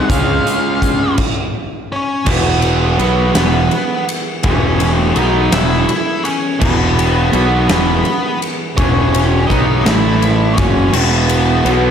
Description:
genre	quiet-loud alternative rock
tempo	55 BPM (dotted quarters)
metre	6/8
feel	straight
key	E major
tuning	A4 = 440 Hz
part	octave-fuzz lead guitar	melody	0.0-11.9 s	B3 to E#5	-18 LUFS	equal	distortion, slapback echo
part	fuzz guitar	riff	0.0-11.9 s	E2 to E#4	-20 LUFS	right 8 dB	distortion, slapback echo
part	raw garage guitar	riff	0.0-11.9 s	E2 to E#4	-20 LUFS	left 8 dB	overdrive, slapback echo
part	fuzz picked electric bass	bass	0.1-11.9 s	E1 to C#2	-17 LUFS	equal	overdrive
part	big rock drum kit	drums	0.1-11.8 s	crash cymbal, hi-hat, kick drum, ride cymbal, snare drum	-18 LUFS	equal	none
part	tonewheel organ	sustained chords	2.3-11.9 s	E3 to A4	-28 LUFS	right 2 dB	none
room	moderate scoring stage reverb, RT60 1.8 s, studio reverb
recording	big arena sound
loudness	-12 LUFS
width	side -8 dB against mid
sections	0.0-2.3 A section; 2.3-11.9 B section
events	stop 1.2-2.3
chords	0.1 C#; 2.3 E; 9.8 A5; 10.6 E

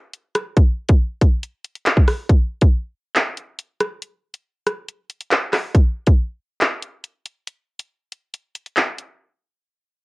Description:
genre	hip hop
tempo	139 BPM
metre	4/4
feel	half-time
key	none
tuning	none
part	drill drum kit	drums	0.1-9.1 s	handclaps, hi-hat, kick drum, rim click	-15 LUFS	equal	cassette tape
room	light reverb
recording	home recording on cassette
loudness	-17 LUFS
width	side -25 dB against mid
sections	0.0-5.7 A section; 5.7-9.2 B section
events	break 4.0-5.7, 7.5-9.2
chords	none

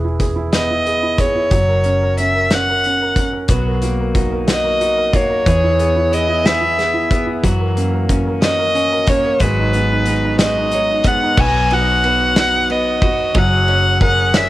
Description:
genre	six-eight pop ballad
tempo	61 BPM (dotted quarters)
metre	6/8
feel	straight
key	B major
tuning	A4 = 441 Hz
part	felt-muted upright piano	accompaniment	0.0-14.5 s	E3 to F#5	-22 LUFS	right 4 dB	cassette tape
part	vintage muted fingered electric bass	bass	0.0-14.5 s	E1 to F#2	-21 LUFS	equal	none
part	loose indie drum kit	drums	0.2-14.5 s	crash cymbal, hi-hat, kick drum, ride cymbal, snare drum	-18 LUFS	equal	cassette tape
part	rich violin	melody	0.5-14.5 s	B4 to G#5	-16 LUFS	equal	cassette tape, analog delay
part	electric guitar at the edge of break-up	arpeggios	3.5-14.5 s	E3 to G#4	-24 LUFS	left 6 dB	spring reverb, cassette tape
room	little or no reverb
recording	home recording on cassette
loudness	-13 LUFS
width	side -16 dB against mid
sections	0.0-11.4 A section; 11.4-14.5 B section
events	felt piano fill 10.4-11.4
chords	0.0 Emaj7; 1.5 F#; 3.5 Bmaj7; 5.5 E; 7.4 F#7; 9.4 G#m7; 11.4 B; 13.3 F#add9

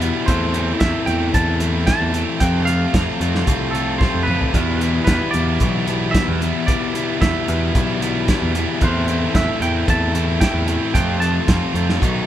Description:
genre	indie rock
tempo	112 BPM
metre	4/4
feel	straight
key	E phrygian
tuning	A4 = 440 Hz
part	crunchy overdriven guitar	riff	0.0-12.3 s	E2 to F#4	-23 LUFS	left 5 dB	none
part	scooped high-gain guitar	riff	0.0-12.3 s	B2 to F4	-24 LUFS	right 6 dB	distortion
part	growling picked electric bass	bass	0.0-12.3 s	B1 to F2	-22 LUFS	equal	overdrive
part	cloth-damped thuddy drum kit	drums	0.0-12.1 s	hi-hat, kick drum, snare drum, toms	-20 LUFS	equal	none
part	twangy electric guitar	melody	0.3-12.3 s	A4 to A5	-25 LUFS	right 2 dB	none
room	light reverb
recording	band playing live in one room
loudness	-16 LUFS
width	side -11 dB against mid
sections	0.0-12.3 A section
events	drum fill 4.0-4.5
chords	0.3 Am/E; 2.4 F; 4.5 Em7; 8.8 Am7/E; 10.9 F

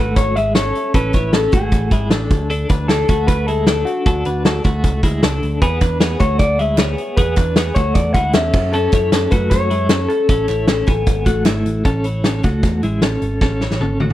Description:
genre	jangly indie pop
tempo	154 BPM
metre	4/4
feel	straight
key	A major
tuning	A4 = 436 Hz
part	electric guitar through a small old amp	melody	0.0-11.4 s	F#4 to F#5	-20 LUFS	left 2 dB	tape echo
part	twelve-string electric guitar	arpeggios	0.0-14.1 s	G#3 to G#5	-22 LUFS	equal	tremolo
part	picked electric bass	bass	0.0-14.1 s	G#1 to F#2	-21 LUFS	equal	none
part	loose indie drum kit	drums	0.2-14.1 s	crash cymbal, hi-hat, kick drum, snare drum, toms	-17 LUFS	equal	none
part	group handclap	percussion	5.8-11.6 s	none	-34 LUFS	right 14 dB	none
room	little or no reverb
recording	none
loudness	-14 LUFS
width	side -14 dB against mid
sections	0.0-11.9 A section; 11.9-14.1 B section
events	drum fill 13.4-14.1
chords	0.0 Amaj7; 2.3 D; 5.6 E7; 8.5 F#m7; 10.3 A6

